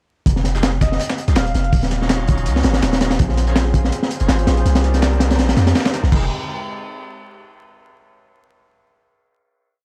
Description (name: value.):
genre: drum and bass, jungle.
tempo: 164 BPM.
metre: 4/4.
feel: swing 55% on 16ths.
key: F minor.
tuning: A4 = 440 Hz.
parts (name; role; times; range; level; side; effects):
long sustained 808-style bass; bass; 0.3-6.3 s; Eb1 to F2; -20 LUFS; equal; none.
crunchy breakbeat drum kit; drums; 0.3-6.2 s; crash cymbal, hi-hat, kick drum, snare drum; -21 LUFS; equal; none.
dusty soul sampler-style drum kit; drums; 0.3-6.1 s; hi-hat, snare drum; -34 LUFS; equal; high-pass filter on hats, high-pass filter on snare.
bright tonewheel organ; stabs; 0.5-6.3 s; Eb3 to C5; -32 LUFS; equal; overdrive, fast rotary speaker, dub echo.
airy dreamy lead; melody; 0.8-1.7 s; Eb5 to F5; -34 LUFS; equal; chorus, vintage 12-bit sampler grit, dub echo.
warbly tape-like pad; sustained chords; 3.2-6.3 s; Ab3 to D5; -31 LUFS; equal; chorus, built-in reverb.
room: small room ambience.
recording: dry, gritty hardware recording, transformer saturation, vinyl crackle.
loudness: -17 LUFS.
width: mono.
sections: 0.3-6.1 drop; 6.1-7.6 final chord.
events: drop 0.3-6.1.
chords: 0.3 Fm9; 1.7 Ebm9; 3.2 Bbm9; 4.7 Cm9; 6.1 Fm9.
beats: | 0.27 0.63 1.00 1.36 | 1.73 2.10 2.46 2.83 | 3.19 3.56 3.92 4.29 | 4.66 5.02 5.39 5.75 | 6.12.